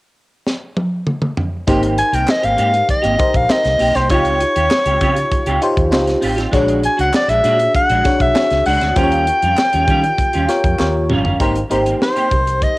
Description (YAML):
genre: polished 1980s jazz-funk pop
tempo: 99 BPM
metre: 4/4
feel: straight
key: Ab major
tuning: A4 = 441 Hz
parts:
  - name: tight funk drum kit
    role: drums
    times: 0.5-12.8 s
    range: hi-hat, kick drum, snare drum, toms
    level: -19 LUFS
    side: equal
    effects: cassette tape
  - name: FM electric piano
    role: accompaniment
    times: 1.7-12.8 s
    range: D4 to Db5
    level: -20 LUFS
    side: left 1 dB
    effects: phaser, lush chorus
  - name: semi-hollow electric guitar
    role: riff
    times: 1.7-12.7 s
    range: G3 to G4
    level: -22 LUFS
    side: right 2 dB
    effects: ensemble chorus
  - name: mellow fretless electric bass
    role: bass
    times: 1.7-12.6 s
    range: G1 to Eb3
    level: -21 LUFS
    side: equal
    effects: none
  - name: warm soprano saxophone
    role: melody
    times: 2.0-12.8 s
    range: C5 to Ab5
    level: -16 LUFS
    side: equal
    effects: none
  - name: group handclap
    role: percussion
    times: 2.3-10.9 s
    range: none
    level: -31 LUFS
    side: right 2 dB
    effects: none
room: light reverb, small room ambience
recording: home recording on cassette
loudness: -13 LUFS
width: side -20 dB against mid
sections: 0.0-1.7 A section; 1.7-11.4 B section; 11.4-12.8 C section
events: drum fill 0.5-1.7, 10.8-11.4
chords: 0.0 N.C.; 1.7 Abmaj9; 4.1 Dbmaj9#11; 6.5 Bb7alt; 9.0 Eb9; 11.4 Abmaj9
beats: 0.46 1.07 | 1.68 2.29 2.89 3.50 | 4.11 4.71 5.32 5.93 | 6.54 7.14 7.75 8.36 | 8.97 9.57 10.18 10.79 | 11.40 12.01 12.62